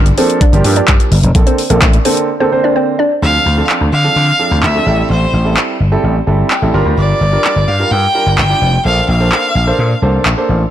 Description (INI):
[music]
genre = dance-pop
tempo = 128 BPM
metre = 4/4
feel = straight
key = unclear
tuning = A4 = 440 Hz
[part]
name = warm baby grand piano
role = accompaniment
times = 0.0-10.6 s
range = D3 to C6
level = -17 LUFS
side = right 3 dB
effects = sidechain pumping
[part]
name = vintage slap bass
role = bass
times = 0.0-10.6 s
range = F1 to D3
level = -13 LUFS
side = equal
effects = sidechain pumping
[part]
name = pop drum kit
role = drums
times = 0.1-10.4 s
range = handclaps, hi-hat, kick drum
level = -14 LUFS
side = equal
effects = overdrive
[part]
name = hollow square pluck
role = melody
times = 0.2-3.1 s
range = Bb3 to D5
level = -16 LUFS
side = equal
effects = chorus, ping-pong delay
[part]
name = clear violin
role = melody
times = 3.2-10.0 s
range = C5 to G5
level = -15 LUFS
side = equal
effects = ping-pong delay
[sound]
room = light reverb, digital ambience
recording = blown-out, overdriven recording, overdrive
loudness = -10 LUFS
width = side -11 dB against mid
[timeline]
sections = 0.0-3.2 A section; 3.2-10.7 B section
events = break 2.3-3.2; grand piano fill 6.3-7.0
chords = 0.0 Gm7; 1.4 Bbmaj9; 3.2 Dm7; 4.9 Am7; 6.7 Gm7; 8.8 Bbmaj9